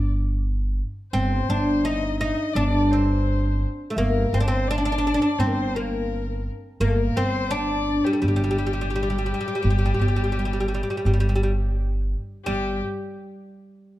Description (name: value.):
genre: arabic.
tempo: 85 BPM.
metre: 4/4.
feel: straight.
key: G minor.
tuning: A4 = 439 Hz.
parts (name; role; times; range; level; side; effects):
oud; melody; 0.0-12.8 s; G3 to Eb4; -25 LUFS; equal; none.
warm violin; second line; 0.0-12.8 s; G4 to Eb5; -30 LUFS; left 6 dB; none.
upright bass; bass; 0.0-12.8 s; G1; -24 LUFS; equal; none.
room: light reverb.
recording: dark, warm production.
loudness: -21 LUFS.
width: side -15 dB against mid.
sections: 0.0-12.5 A section; 12.5-14.0 B section.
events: none.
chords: none.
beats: 0.43 | 1.14 1.85 2.56 3.27 | 3.98 4.68 5.39 6.10 | 6.81 7.52 8.23 8.93 | 9.64 10.35 11.06 11.77 | 12.47.